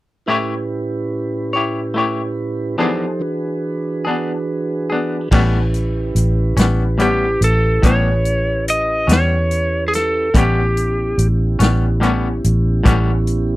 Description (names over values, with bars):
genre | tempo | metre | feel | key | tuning
slow blues | 48 BPM (dotted quarters) | 12/8 | straight | A mixolydian | A4 = 443 Hz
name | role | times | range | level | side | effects
electric guitar at the edge of break-up | accompaniment | 0.3-13.1 s | A2 to C#5 | -19 LUFS | left 3 dB | tremolo
mellow tonewheel organ | sustained chords | 0.3-13.6 s | A2 to C5 | -23 LUFS | right 2 dB | slow rotary speaker
vintage muted fingered electric bass | bass | 5.3-13.6 s | A1 to E2 | -17 LUFS | equal | none
vintage drum kit | drums | 5.3-13.5 s | crash cymbal, hi-hat, kick drum, snare drum | -17 LUFS | equal | none
lightly driven lead guitar | melody | 7.0-11.3 s | G4 to D#5 | -18 LUFS | equal | none
room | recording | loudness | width
little or no reverb | dry, close 1970s-style studio recording | -15 LUFS | side -18 dB against mid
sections
0.3-5.3 A section; 5.3-13.6 B section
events
none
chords
0.3 A7; 2.8 E7; 5.3 A9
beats
| 0.28 1.54 2.80 4.06 | 5.32 6.57 7.83 9.09 | 10.34 11.60 12.85